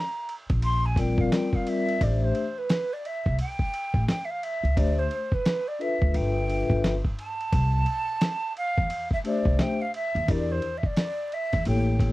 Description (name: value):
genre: hip hop, jazz-hop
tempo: 87 BPM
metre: 4/4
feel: swing 61% on 16ths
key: A minor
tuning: A4 = 441 Hz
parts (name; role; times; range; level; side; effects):
- breathy mellow jazz flute; melody; 0.0-12.1 s; B4 to C6; -29 LUFS; right 1 dB; none
- dusty soul sampler-style drum kit; drums; 0.3-12.1 s; hi-hat, kick drum, ride cymbal, snare drum; -27 LUFS; equal; overdrive
- upright bass; bass; 0.5-12.1 s; G1 to E2; -26 LUFS; equal; none
- vibraphone with soft mallets; accompaniment; 1.0-12.1 s; G3 to E5; -27 LUFS; left 3 dB; none
room: little or no reverb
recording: dry, close 1970s-style studio recording, vinyl crackle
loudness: -23 LUFS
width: side -18 dB against mid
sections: 0.0-2.0 A section; 2.0-12.1 B section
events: flute solo 0.0-2.0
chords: 0.0 Bb69; 2.0 Am7; 4.8 Dm11; 6.1 G13; 7.5 C69; 10.3 Em7b5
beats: 0.63 1.32 | 2.01 2.70 3.39 4.08 | 4.77 5.46 6.15 6.84 | 7.53 8.21 8.90 9.60 | 10.28 10.97 11.66